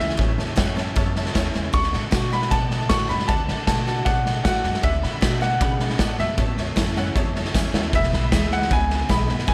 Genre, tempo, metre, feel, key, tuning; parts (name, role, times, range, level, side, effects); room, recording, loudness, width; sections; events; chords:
rockabilly; 155 BPM; 4/4; straight; A major; A4 = 440 Hz
bright upright piano; melody; 0.0-9.5 s; E5 to C#6; -28 LUFS; equal
honky-tonk upright piano; accompaniment; 0.0-9.5 s; B4 to B5; -36 LUFS; equal
picked steel-string acoustic guitar; accompaniment; 0.0-9.5 s; E2 to F#4; -32 LUFS; equal
upright bass; bass; 0.0-9.5 s; E1 to B2; -28 LUFS; equal
raw garage drum kit; drums; 0.0-9.5 s; hi-hat, kick drum, snare drum; -25 LUFS; equal
studio reverb; -22 LUFS; mono
0.0-9.5 A section
drum fill 7.5-7.9
0.0 A; 1.7 D; 6.4 A; 7.9 E